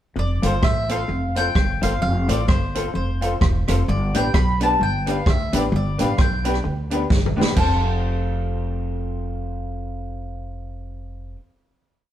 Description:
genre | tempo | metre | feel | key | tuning
ska | 130 BPM | 4/4 | swing 58% on 8ths | F lydian | A4 = 440 Hz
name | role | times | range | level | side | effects
mandolin | melody | 0.2-11.3 s | C5 to B5 | -25 LUFS | left 1 dB | none
semi-hollow electric guitar | riff | 0.2-7.5 s | E2 to D3 | -28 LUFS | left 2 dB | none
upright bass | bass | 0.2-11.3 s | E1 to D2 | -24 LUFS | equal | none
electric guitar through a small old amp | accompaniment | 0.4-11.4 s | B3 to C5 | -29 LUFS | left 1 dB | none
tack piano | stabs | 0.4-11.3 s | D4 to C5 | -30 LUFS | left 2 dB | none
swinging big-band drum kit | drums | 0.4-7.7 s | crash cymbal, hi-hat, kick drum, rim click, snare drum, toms | -21 LUFS | right 1 dB | none
room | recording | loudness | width
moderate stone room reverb, RT60 1.2 s | band playing live in one room | -18 LUFS | side -11 dB against mid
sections
0.2-7.6 head; 7.6-11.3 final chord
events
drum fill 7.1-7.6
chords
0.2 F; 3.9 G; 7.6 F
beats
| 0.16 0.63 1.09 1.56 | 2.02 2.49 2.95 3.42 | 3.88 4.34 4.80 5.27 | 5.73 6.19 6.65 7.11 | 7.57 8.04 8.50 8.96 | 9.42 9.88 10.35 10.81

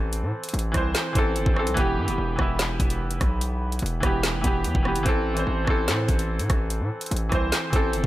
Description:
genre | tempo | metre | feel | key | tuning
hip hop, drill | 146 BPM | 4/4 | half-time | unclear | A4 = 439 Hz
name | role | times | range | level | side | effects
bright concert grand piano | accompaniment | 0.0-8.1 s | E3 to C5 | -26 LUFS | right 1 dB | low-pass filter
distorted 808-style bass | bass | 0.0-8.1 s | E1 to A2 | -27 LUFS | equal | distortion
drill drum kit | drums | 0.1-8.1 s | handclaps, hi-hat, kick drum, rim click, snare drum | -25 LUFS | equal | none
room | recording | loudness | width
little or no reverb | none | -22 LUFS | side -16 dB against mid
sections
0.0-8.1 A section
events
none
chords
0.0 Am; 1.8 Em; 5.1 Am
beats
| 0.13 0.54 0.95 1.36 | 1.77 2.18 2.59 3.00 | 3.41 3.83 4.24 4.65 | 5.06 5.47 5.88 6.29 | 6.70 7.11 7.52 7.93

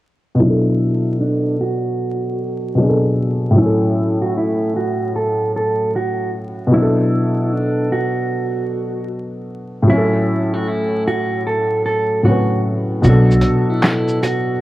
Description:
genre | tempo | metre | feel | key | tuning
lo-fi hip hop | 76 BPM | 4/4 | swing 62% on 16ths | unclear | A4 = 440 Hz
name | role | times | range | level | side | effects
dark upright piano | accompaniment | 0.3-14.6 s | A2 to B4 | -17 LUFS | equal | low-pass filter
mellow electric guitar | melody | 0.4-14.6 s | D4 to A4 | -20 LUFS | right 1 dB | spring reverb, low-pass filter, analog delay
upright bass | bass | 13.0-13.4 s | B1 | -14 LUFS | equal | none
lo-fi sampler-style drum kit | drums | 13.0-14.5 s | handclaps, hi-hat, shaker, snare drum | -18 LUFS | equal | none
room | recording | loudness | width
moderate small room reverb, RT60 0.5 s | worn, warbling old tape, cassette tape, vinyl crackle, warbly pitch drift | -15 LUFS | side -16 dB against mid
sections
0.4-13.0 A section; 13.0-14.6 B section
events
filter sweep 0.4-13.0; kick muted 13.0-14.6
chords
0.4 Bm7; 3.6 A6; 6.7 Bm7; 9.9 A6; 13.0 Bm7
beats
| 0.41 1.20 1.99 2.78 | 3.57 4.36 5.14 5.93 | 6.72 7.51 8.30 9.09 | 9.88 10.67 11.46 12.25 | 13.04 13.83

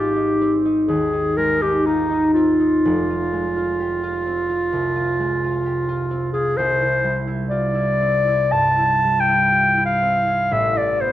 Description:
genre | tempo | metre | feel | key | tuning
classical, impressionist duo for clarinet and harp | 56-65 BPM | 4/4 | rubato | unclear | A4 = 441 Hz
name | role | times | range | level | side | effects
mellow clarinet | melody | 0.0-11.1 s | Eb4 to A5 | -19 LUFS | equal | none
concert harp | accompaniment | 0.0-11.1 s | F1 to G4 | -21 LUFS | equal | none
room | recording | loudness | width
moderate scoring stage reverb, RT60 1.7 s | none | -17 LUFS | side -13 dB against mid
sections
0.0-11.1 A section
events
none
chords
0.0 Ab; 2.8 Fmadd9; 6.6 Cadd9; 10.5 Am9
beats
0.87 1.84 | 2.81 3.77 4.71 5.64 | 6.57 7.51 8.54 9.53 | 10.52

